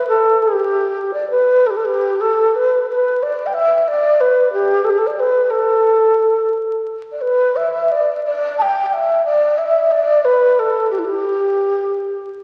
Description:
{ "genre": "chinese traditional", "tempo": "89 BPM", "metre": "2/4", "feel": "rubato", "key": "G gong mode", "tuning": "A4 = 442 Hz", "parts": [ { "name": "breathy xiao", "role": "solo", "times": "0.0-12.3 s", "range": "E4 to A5", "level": "-16 LUFS", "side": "equal", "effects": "none" } ], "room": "wet concert hall reverb, RT60 2.2 s", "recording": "very old 78 rpm record, vinyl crackle", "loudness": "-16 LUFS", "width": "mono", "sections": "0.0-1.8 A section; 1.8-12.4 B section", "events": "none", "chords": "none", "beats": "| 0.43 1.11 | 1.81 2.50 | 3.17 3.84 | 4.49 5.15 | 5.82 6.50 | 7.20 7.89 | 8.58 9.26 | 9.92 10.58 | 11.24 11.92" }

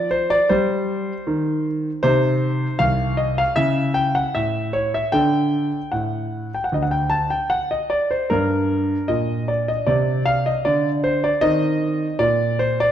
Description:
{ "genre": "classical-period piano sonatina", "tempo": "77 BPM", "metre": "4/4", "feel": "straight", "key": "G minor", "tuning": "A4 = 438 Hz", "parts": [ { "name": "clear concert grand piano", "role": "solo", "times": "0.0-12.9 s", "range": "C2 to A5", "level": "-18 LUFS", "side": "equal", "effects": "none" } ], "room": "wet recital hall reverb, RT60 1.8 s", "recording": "dark, warm production", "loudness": "-18 LUFS", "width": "side -10 dB against mid", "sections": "0.0-12.9 A section", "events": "none", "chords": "0.0 Cm; 3.6 A/C#; 5.1 D5; 8.3 Gm; 11.4 Cm", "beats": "0.51 1.28 | 2.04 2.81 3.58 4.36 | 5.14 5.93 6.73 7.52 | 8.32 9.11 9.89 10.66 | 11.44 12.21" }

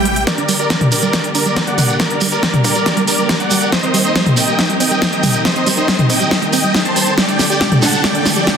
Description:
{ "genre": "uplifting trance", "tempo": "139 BPM", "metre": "4/4", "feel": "straight", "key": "G minor", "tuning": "A4 = 442 Hz", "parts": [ { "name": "big supersaw lead", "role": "melody", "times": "0.0-8.6 s", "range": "Bb4 to A5", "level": "-18 LUFS", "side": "equal", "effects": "sidechain pumping, low-pass filter, ping-pong delay" }, { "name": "rich chamber string section", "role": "sustained chords", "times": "0.0-8.6 s", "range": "C3 to Bb4", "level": "-22 LUFS", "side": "left 1 dB", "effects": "sidechain pumping" }, { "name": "swell and riser", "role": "sound effects", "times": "0.0-0.3, 7.5-8.6 s", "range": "none", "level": "-23 LUFS", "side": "right 1 dB", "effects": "none" }, { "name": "big-room dance drum kit", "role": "drums", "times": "0.1-8.6 s", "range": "hi-hat, snare drum, toms", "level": "-16 LUFS", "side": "equal", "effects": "studio reverb" }, { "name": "wide unison pluck", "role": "arpeggios", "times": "0.3-8.5 s", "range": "G3 to G4", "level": "-21 LUFS", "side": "right 3 dB", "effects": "sidechain pumping, ping-pong delay" }, { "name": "electronic kick drum", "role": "drums", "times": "0.3-8.6 s", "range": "none", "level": "-24 LUFS", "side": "equal", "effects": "high-pass filter on kick, studio reverb" }, { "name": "shekere", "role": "percussion", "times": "0.3-8.6 s", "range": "none", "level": "-23 LUFS", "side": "right 4 dB", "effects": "none" } ], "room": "moderate lush hall reverb, RT60 1.9 s, digital ambience", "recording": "dense, heavily limited modern master", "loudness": "-12 LUFS", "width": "side -7 dB against mid", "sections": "0.3-8.6 A section", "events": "swell 0.0; build-up 0.3-8.6; drum fill 0.3-8.6; filter sweep on supersaw synth 0.3-8.6; filter sweep on synth pluck 0.3-8.6; riser 7.5-8.6", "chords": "0.3 Gm; 3.7 Cm7; 7.2 Dsus4", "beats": "| 0.27 0.70 1.13 1.57 | 2.00 2.43 2.86 3.29 | 3.72 4.16 4.59 5.02 | 5.45 5.88 6.31 6.75 | 7.18 7.61 8.04 8.47" }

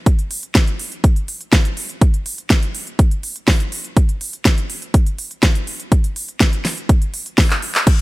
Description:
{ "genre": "house", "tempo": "123 BPM", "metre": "4/4", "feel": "straight", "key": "none", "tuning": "none", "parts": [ { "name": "electronic kick drum", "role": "drums", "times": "0.1-8.0 s", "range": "none", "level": "-14 LUFS", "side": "equal", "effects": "overdrive" }, { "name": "pop drum kit", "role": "drums", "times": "0.1-8.0 s", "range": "crash cymbal, handclaps, hi-hat, snare drum", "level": "-20 LUFS", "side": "equal", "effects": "sidechain pumping on hats, sidechain pumping on cymbals" } ], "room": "digital ambience", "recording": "none", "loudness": "-15 LUFS", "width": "side -20 dB against mid", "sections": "0.0-8.0 A section", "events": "drum fill 7.5-7.9", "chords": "none", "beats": "| 0.06 0.55 1.04 1.53 | 2.01 2.50 2.99 3.48 | 3.97 4.45 4.94 5.43 | 5.92 6.41 6.89 7.38 | 7.87" }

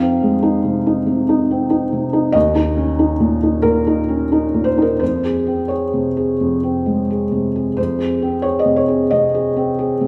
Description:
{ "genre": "neoclassical minimalist piano", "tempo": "86-95 BPM", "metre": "4/4", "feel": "rubato", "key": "unclear", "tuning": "A4 = 436 Hz", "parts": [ { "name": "felt-muted upright piano", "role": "solo", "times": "0.0-10.1 s", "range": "Eb2 to F5", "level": "-17 LUFS", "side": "equal", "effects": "none" } ], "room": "wet recital hall reverb, RT60 1.7 s", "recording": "recorded in a church or concert hall", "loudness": "-17 LUFS", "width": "mono", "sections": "0.0-10.1 A section", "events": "none", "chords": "0.0 Fm7; 2.4 Eb5; 5.0 Dbmaj7/F", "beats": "0.44 1.08 1.72 | 2.35 3.00 3.66 4.33 | 5.01 5.70 6.40 7.09 | 7.78 8.45 9.13 9.80" }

